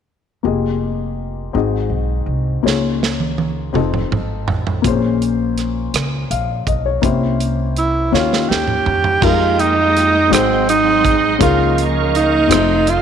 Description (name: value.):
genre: slow gospel.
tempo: 55 BPM (dotted quarters).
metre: 6/8.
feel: straight.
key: F minor.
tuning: A4 = 439 Hz.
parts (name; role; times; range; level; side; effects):
dark baby grand piano; accompaniment; 0.4-13.0 s; Ab2 to F5; -20 LUFS; left 10 dB; none.
upright bass; bass; 0.4-13.0 s; F1 to F2; -21 LUFS; right 1 dB; none.
modern studio drum kit; drums; 2.7-13.0 s; crash cymbal, hi-hat, kick drum, rim click, snare drum, toms; -21 LUFS; right 4 dB; none.
warm tenor saxophone; melody; 7.8-13.0 s; C4 to G4; -15 LUFS; right 3 dB; tape echo.
bright tonewheel organ; sustained chords; 9.2-13.0 s; Ab3 to Db6; -22 LUFS; right 8 dB; fast rotary speaker, chorus vibrato.
warm studio string section; sustained chords; 9.2-13.0 s; F3 to G4; -25 LUFS; equal; none.
room: moderate echo chamber reverb, RT60 2.2 s.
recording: 1960s-style stereo with parts hard left and right.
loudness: -14 LUFS.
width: side -8 dB against mid.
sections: 0.4-9.2 A section; 9.2-13.0 B section.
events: drum fill 2.6-4.8, 8.1-9.2.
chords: 0.4 Fm11; 1.5 Ab7; 2.6 Db69; 3.7 F7; 4.8 Bbm9; 7.0 C7b9; 8.1 Eb7; 9.2 Fm11; 10.3 Ab7; 11.4 Db69; 12.5 F7.